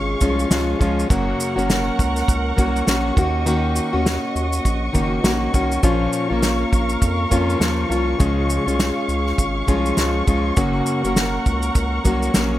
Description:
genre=acoustic pop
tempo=101 BPM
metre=4/4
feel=swing 60% on 16ths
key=unclear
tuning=A4 = 440 Hz
part: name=fingerpicked plugged-in steel-string acoustic guitar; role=accompaniment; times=0.0-12.6 s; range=Gb2 to Gb4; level=-21 LUFS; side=left 1 dB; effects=none
part: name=warm symphonic string section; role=sustained chords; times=0.0-12.6 s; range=Gb4 to Db6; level=-26 LUFS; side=equal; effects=none
part: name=round analog bass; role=bass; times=0.0-12.6 s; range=Gb1 to F2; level=-24 LUFS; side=equal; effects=none
part: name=unplugged drum kit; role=drums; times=0.2-12.5 s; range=kick drum, shaker, snare drum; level=-21 LUFS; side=equal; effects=none
room=small room ambience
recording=none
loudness=-17 LUFS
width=side -14 dB against mid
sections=0.0-12.6 A section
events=none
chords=0.0 Db; 1.1 Gb; 3.2 Ebm7; 5.8 Bbm; 8.2 Db; 10.6 Gb

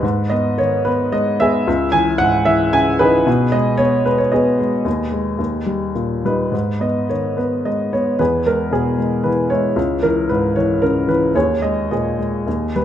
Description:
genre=classical, lyrical solo piano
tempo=101-115 BPM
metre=3/4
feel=rubato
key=G# minor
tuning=A4 = 440 Hz
part: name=warm upright piano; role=solo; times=0.0-12.8 s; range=C#2 to G#5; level=-15 LUFS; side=equal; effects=none
room=moderate recital hall reverb, RT60 1.8 s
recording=none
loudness=-15 LUFS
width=side -10 dB against mid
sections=0.0-6.5 A section; 6.5-12.8 A section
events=none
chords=0.0 G#m; 1.7 C#madd9; 3.3 G#m/B; 4.9 D#sus4; 5.4 D#; 6.5 G#m; 8.2 E; 9.8 C#m; 11.3 D#sus4

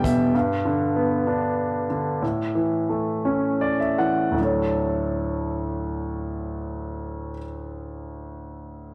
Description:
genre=pop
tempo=50-66 BPM (dotted quarters)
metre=6/8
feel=straight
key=D major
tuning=A4 = 440 Hz
part: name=clear concert grand piano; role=accompaniment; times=0.0-8.9 s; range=D2 to G5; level=-25 LUFS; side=equal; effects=none
room=moderate stone room reverb, RT60 0.9 s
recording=rough rehearsal-room recording, warm saturation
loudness=-24 LUFS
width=mono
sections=0.0-4.4 A section; 4.4-8.9 B section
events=grand piano fill 0.0-0.3, 3.3-4.4; slowing down 0.3-4.4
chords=0.3 G; 2.2 A; 4.4 Dmaj7

